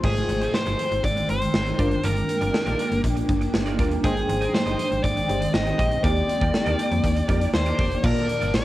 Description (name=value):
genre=1980s-style pop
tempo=120 BPM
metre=4/4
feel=straight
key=unclear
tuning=A4 = 442 Hz
part: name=dark smooth lead guitar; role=melody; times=0.0-8.6 s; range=Ab4 to Eb5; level=-27 LUFS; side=equal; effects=overdrive, cassette tape
part: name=FM electric piano with soft pad layer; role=accompaniment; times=0.0-8.6 s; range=G2 to A5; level=-28 LUFS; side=left 1 dB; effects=chorus, phaser
part: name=granular cloud pad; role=sustained chords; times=0.0-8.6 s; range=D3 to G5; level=-28 LUFS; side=equal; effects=built-in reverb
part: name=twelve-string electric guitar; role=riff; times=0.0-8.6 s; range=Ab3 to Eb5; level=-35 LUFS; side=right 4 dB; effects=ensemble chorus
part: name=slap-like FM bass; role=bass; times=0.0-8.6 s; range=F1 to F2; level=-26 LUFS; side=equal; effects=none
part: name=big rock drum kit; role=drums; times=0.0-8.6 s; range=crash cymbal, hi-hat, kick drum, snare drum, tambourine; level=-26 LUFS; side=equal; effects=cassette tape
part: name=cranked stack guitar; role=accompaniment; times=8.0-8.6 s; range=Bb2 to Bb3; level=-38 LUFS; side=left 2 dB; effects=none
room=wet booth ambience, RT60 0.2 s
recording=home recording on cassette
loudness=-20 LUFS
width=side -15 dB against mid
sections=0.0-8.0 A section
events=none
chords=0.0 Abmaj7; 1.8 Gm7; 4.0 Abmaj7; 6.0 Ebmaj7; 8.0 Bbmaj7